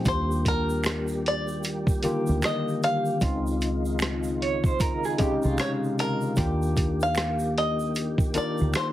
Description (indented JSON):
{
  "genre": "R&B, neo-soul",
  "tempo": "76 BPM",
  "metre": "4/4",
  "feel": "swing 61% on 16ths",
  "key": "Eb major",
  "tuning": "A4 = 440 Hz",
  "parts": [
    { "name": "bluegrass banjo", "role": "melody", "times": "0.0-8.9 s", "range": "Bb4 to F5", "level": "-28 LUFS", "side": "equal", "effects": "none" },
    { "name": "electric guitar through a small old amp", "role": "second line", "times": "0.0-6.3 s", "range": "F4 to Db5", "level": "-30 LUFS", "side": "right 6 dB", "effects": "tremolo, slapback echo" },
    { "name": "barky tine electric piano", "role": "accompaniment", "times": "0.0-8.9 s", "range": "C3 to Bb4", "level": "-28 LUFS", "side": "left 2 dB", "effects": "overdrive, lush chorus" },
    { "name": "tonewheel organ", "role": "sustained chords", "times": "0.1-8.9 s", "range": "Eb3 to G4", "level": "-34 LUFS", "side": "right 1 dB", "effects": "overdrive, chorus vibrato, slow rotary speaker" },
    { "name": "deep dub fingered electric bass", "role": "bass", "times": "0.1-8.7 s", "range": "C2 to Eb2", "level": "-29 LUFS", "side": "right 1 dB", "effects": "none" },
    { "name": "dusty soul sampler-style drum kit", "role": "drums", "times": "0.1-8.9 s", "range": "hi-hat, kick drum, rim click", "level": "-26 LUFS", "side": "right 1 dB", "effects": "none" },
    { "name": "egg shaker and finger snaps", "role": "percussion", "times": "0.1-8.9 s", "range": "none", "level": "-40 LUFS", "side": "right 3 dB", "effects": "none" }
  ],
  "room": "moderate small room reverb, RT60 0.5 s",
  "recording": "heavily compressed radio sound, multiband compression",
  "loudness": "-23 LUFS",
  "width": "side -13 dB against mid",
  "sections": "0.0-8.9 A section",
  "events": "none",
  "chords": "0.1 Ebmaj7; 3.2 Dbmaj9; 6.4 Ebmaj7"
}